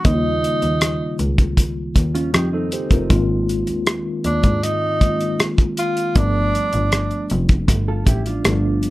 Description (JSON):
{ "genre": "lush 1970s-style soul", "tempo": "79 BPM", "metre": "4/4", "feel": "straight", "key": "unclear", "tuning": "A4 = 440 Hz", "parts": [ { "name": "warm tenor saxophone", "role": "melody", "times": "0.0-7.3 s", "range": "D4 to E#4", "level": "-21 LUFS", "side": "right 1 dB", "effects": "none" }, { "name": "tine electric piano", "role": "accompaniment", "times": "0.0-8.9 s", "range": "C#3 to C5", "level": "-23 LUFS", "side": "left 1 dB", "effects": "medium stereo tremolo" }, { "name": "bright double bass", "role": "bass", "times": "0.0-8.8 s", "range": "E#1 to G#2", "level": "-22 LUFS", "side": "equal", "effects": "none" }, { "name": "cloth-damped thuddy drum kit", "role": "drums", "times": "0.0-8.9 s", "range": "hi-hat, kick drum, rim click", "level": "-17 LUFS", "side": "equal", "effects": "none" }, { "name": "mellow electric guitar", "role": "riff", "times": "2.1-3.1, 7.9-8.9 s", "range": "C4 to A4", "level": "-26 LUFS", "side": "right 3 dB", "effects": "warbly pitch drift" } ], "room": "little or no reverb", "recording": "none", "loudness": "-16 LUFS", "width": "side -18 dB against mid", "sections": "0.0-8.9 A section", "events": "none", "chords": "0.0 D#7; 3.1 G#6; 6.2 G9" }